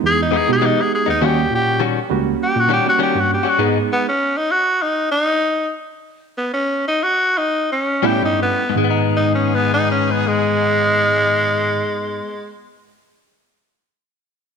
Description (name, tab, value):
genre	blues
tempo	81-101 BPM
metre	4/4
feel	straight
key	G# harmonic minor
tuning	A4 = 440 Hz
part	barky reed electric piano	accompaniment	0.0-4.1, 8.0-11.8 s	D#3 to G#4	-23 LUFS	right 12 dB	overdrive, fast tremolo
part	tine electric piano	bass	0.0-3.8, 8.0-11.8 s	C#2 to B2	-22 LUFS	equal	overdrive, medium stereo tremolo
part	raspy tenor saxophone	melody	0.1-12.5 s	G#3 to G#4	-17 LUFS	equal	none
part	direct-recorded clean electric guitar	stabs	0.3-3.8, 8.0-12.4 s	G#2 to F#4	-22 LUFS	left 11 dB	none
part	bright horn section	sustained chords	1.2-3.7, 8.0-11.8 s	D#3 to G#4	-28 LUFS	left 10 dB	none
room	moderate echo chamber reverb, RT60 1.5 s, small room ambience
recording	1960s-style stereo with parts hard left and right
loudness	-15 LUFS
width	side -6 dB against mid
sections	0.0-8.8 A section; 8.8-11.7 B section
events	slowing down 3.6-8.8; stop 3.6-8.0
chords	0.0 Emaj7; 1.2 D#7#9; 3.6 G#m; 8.0 A7; 8.8 G#m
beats	0.03 0.62 | 1.21 1.81 2.40 2.99 | 3.59 4.18 4.79 5.40 | 6.03 6.67 7.34 8.03 | 8.76 9.50 10.24 10.98